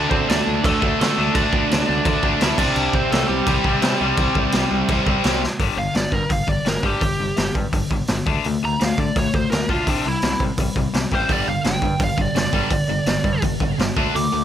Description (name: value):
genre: punk rock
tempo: 169 BPM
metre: 4/4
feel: straight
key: unclear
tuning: A4 = 440 Hz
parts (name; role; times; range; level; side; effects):
- biting lead guitar; melody; 0.0-14.4 s; G3 to D6; -24 LUFS; right 2 dB; overdrive, digital delay
- cranked stack guitar; riff; 0.0-14.4 s; G2 to D4; -24 LUFS; left 9 dB; overdrive
- distorted electric guitar; riff; 0.0-5.4, 11.3-14.4 s; G2 to D4; -25 LUFS; right 16 dB; overdrive
- growling picked electric bass; bass; 0.0-14.4 s; G1 to D3; -27 LUFS; equal; overdrive
- raw garage drum kit; drums; 0.1-14.2 s; crash cymbal, hi-hat, kick drum, snare drum; -22 LUFS; equal; none
room: light reverb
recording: none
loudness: -17 LUFS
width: side -10 dB against mid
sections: 0.0-5.6 A section; 5.6-14.4 B section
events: drum fill 5.4; lead electric guitar solo 5.6-14.4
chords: 0.0 D5; 2.6 C5; 5.6 G5; 8.3 D5; 9.9 C; 11.3 G5